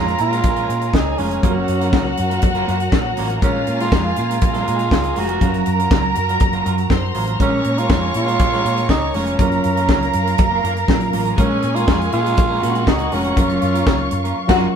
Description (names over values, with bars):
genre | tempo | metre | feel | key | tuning
disco | 121 BPM | 4/4 | straight | Bb minor | A4 = 440 Hz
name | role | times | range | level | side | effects
growling tenor saxophone | melody | 0.0-14.6 s | Db4 to Gb4 | -22 LUFS | right 2 dB | none
rich studio violin section | second line | 0.0-14.7 s | F4 to Db6 | -23 LUFS | right 1 dB | none
reed electric piano | accompaniment | 0.0-14.8 s | Bb2 to F5 | -26 LUFS | right 1 dB | overdrive, fast tremolo
semi-hollow electric guitar | accompaniment | 0.0-14.7 s | Gb3 to Bb4 | -27 LUFS | right 3 dB | none
dark studio string section | sustained chords | 0.0-14.8 s | Gb4 to Db6 | -28 LUFS | equal | none
hollow-body short-scale fingered electric bass | bass | 0.0-14.7 s | F1 to Bb2 | -23 LUFS | equal | none
tight funk drum kit | drums | 0.1-14.7 s | crash cymbal, hi-hat, kick drum, snare drum | -18 LUFS | equal | none
room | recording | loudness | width
moderate studio reverb, RT60 0.6 s | band playing live in one room | -15 LUFS | side -7 dB against mid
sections
0.0-14.8 A section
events
band accent 14.4-14.8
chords
0.0 Bbm7; 1.4 Gbmaj7; 3.4 Bbm7; 5.4 Gbmaj7; 7.4 Bbm7; 9.4 Gbmaj7; 11.4 Bbm7; 13.4 Gbmaj7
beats
0.44 0.94 | 1.44 1.93 2.43 2.93 | 3.42 3.92 4.42 4.92 | 5.41 5.91 6.41 6.91 | 7.40 7.90 8.40 8.89 | 9.39 9.89 10.39 10.88 | 11.38 11.88 12.38 12.87 | 13.37 13.87 14.37